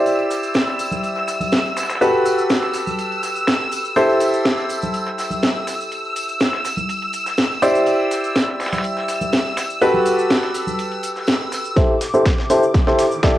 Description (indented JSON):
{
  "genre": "piano house",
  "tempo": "123 BPM",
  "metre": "4/4",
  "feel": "straight",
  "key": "A dorian",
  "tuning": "A4 = 440 Hz",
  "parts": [
    { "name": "string machine, violins", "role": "sustained chords", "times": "0.0-13.4 s", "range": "D6 to E6", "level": "-25 LUFS", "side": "equal", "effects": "ensemble chorus, sidechain pumping, cassette tape" },
    { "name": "bright grand piano", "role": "riff", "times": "0.0-13.3 s", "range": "E4 to D5", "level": "-19 LUFS", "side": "equal", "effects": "sidechain pumping, low-pass filter, cassette tape, analog delay" },
    { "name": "dusty soul sampler-style drum kit", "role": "drums", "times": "0.1-13.4 s", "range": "hi-hat, snare drum", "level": "-30 LUFS", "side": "equal", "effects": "high-pass filter on snare, low-pass filter on snare, cassette tape, sidechain pumping on hats, high-pass filter on hats, low-pass filter on hats" },
    { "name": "house drum kit", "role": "drums", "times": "0.1-13.3 s", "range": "hi-hat, shaker, snare drum", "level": "-21 LUFS", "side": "equal", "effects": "overdrive, cassette tape" },
    { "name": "tambourine and congas", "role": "percussion", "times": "0.1-11.7 s", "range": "none", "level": "-31 LUFS", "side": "equal", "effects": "none" },
    { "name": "electronic kick drum", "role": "drums", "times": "11.8-13.3 s", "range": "none", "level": "-16 LUFS", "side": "equal", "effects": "overdrive, cassette tape" },
    { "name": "riser", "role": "sound effects", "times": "12.1-13.4 s", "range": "none", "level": "-34 LUFS", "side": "equal", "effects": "none" }
  ],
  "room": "wet studio reverb, RT60 0.6 s",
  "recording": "home recording on cassette",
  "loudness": "-16 LUFS",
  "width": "side -14 dB against mid",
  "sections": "0.0-11.8 A section; 11.8-13.4 B section",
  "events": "build-up 11.8-13.4; drum fill 11.8-13.4; filter sweep on grand piano 11.8-13.4",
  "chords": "0.0 D9sus4; 2.0 Gmaj9; 4.0 Am7; 7.6 D9sus4; 9.8 Gmaj9; 11.8 Am7"
}